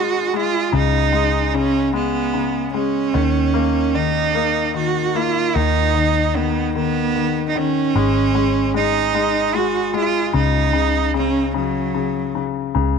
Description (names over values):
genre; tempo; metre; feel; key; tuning
six-eight pop ballad; 50 BPM (dotted quarters); 6/8; straight; unclear; A4 = 435 Hz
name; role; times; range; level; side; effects
rich cello; melody; 0.0-12.4 s; Gb3 to Gb4; -19 LUFS; right 8 dB; tape echo
clear concert grand piano; accompaniment; 0.0-13.0 s; Db3 to Bb3; -22 LUFS; left 14 dB; none
vintage muted fingered electric bass; bass; 0.0-13.0 s; Ab1 to Eb2; -22 LUFS; left 1 dB; none
room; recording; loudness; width
light reverb, small room reverb; 1960s-style stereo with parts hard left and right; -16 LUFS; side -6 dB against mid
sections
0.0-12.8 A section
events
none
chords
0.0 Ab5; 0.7 Db5; 3.1 Eb5; 5.5 B/D#; 7.9 Ab5; 10.3 Dbsus4